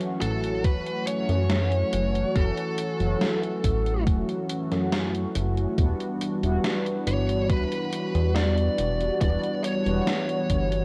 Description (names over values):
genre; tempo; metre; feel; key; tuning
vaporwave; 70 BPM; 4/4; straight; E dorian; A4 = 440 Hz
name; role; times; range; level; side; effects
mellow synth brass; accompaniment; 0.0-10.8 s; E3 to F#4; -30 LUFS; equal; analog chorus
gated 80s digital drum machine; drums; 0.0-10.8 s; hi-hat, snare drum; -33 LUFS; equal; gated reverb, gated reverb snare, studio reverb
biting lead guitar; melody; 0.2-10.8 s; A4 to D5; -32 LUFS; equal; overdrive, tape echo
chorused synth bass; bass; 0.2-10.8 s; D1 to F#2; -28 LUFS; equal; none
electronic kick drum; drums; 0.6-10.7 s; none; -26 LUFS; equal; studio reverb
room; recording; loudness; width
light reverb; worn, warbling old tape, cassette tape, warbly pitch drift; -25 LUFS; mono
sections
0.0-10.8 A section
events
none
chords
0.0 F#m7; 5.8 Em9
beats
0.64 1.50 | 2.36 3.22 4.07 4.93 | 5.79 6.64 7.50 8.36 | 9.22 10.07